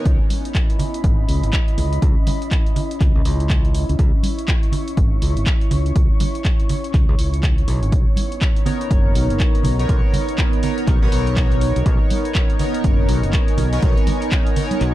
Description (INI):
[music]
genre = deep house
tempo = 122 BPM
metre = 4/4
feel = swing 60% on 16ths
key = C# dorian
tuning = A4 = 440 Hz
[part]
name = chorused polysynth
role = stabs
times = 0.0, 8.7-14.9 s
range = B3 to C#5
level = -25 LUFS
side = right 1 dB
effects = dub echo
[part]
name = airy breathy pad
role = texture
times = 0.0-14.9 s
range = B3 to C#6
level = -28 LUFS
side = equal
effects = chorus, sidechain pumping
[part]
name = fingered electric bass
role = bass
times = 0.1-14.9 s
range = F#1 to C#2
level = -20 LUFS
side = equal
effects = sidechain pumping
[part]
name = electronic kick drum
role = drums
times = 0.1-14.4 s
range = none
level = -17 LUFS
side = equal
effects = none
[part]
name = punchy analog drum machine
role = drums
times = 0.1-14.9 s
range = handclaps, hi-hat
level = -29 LUFS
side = equal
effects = none
[part]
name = congas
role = percussion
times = 0.3-14.8 s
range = none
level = -25 LUFS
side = right 3 dB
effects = none
[part]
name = warbly tape-like pad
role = sustained chords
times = 8.4-14.9 s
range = B3 to D#5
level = -29 LUFS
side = equal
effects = chorus, built-in reverb, sidechain pumping
[sound]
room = digital ambience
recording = dark, warm production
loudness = -16 LUFS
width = side -15 dB against mid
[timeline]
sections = 0.1-14.9 A section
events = none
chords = 0.1 C#m9; 7.9 Bmaj9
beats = | 0.06 0.55 1.04 1.53 | 2.02 2.52 3.01 3.50 | 3.99 4.48 4.97 5.46 | 5.96 6.45 6.94 7.43 | 7.92 8.42 8.91 9.40 | 9.89 10.38 10.88 11.37 | 11.86 12.35 12.84 13.33 | 13.83 14.32 14.81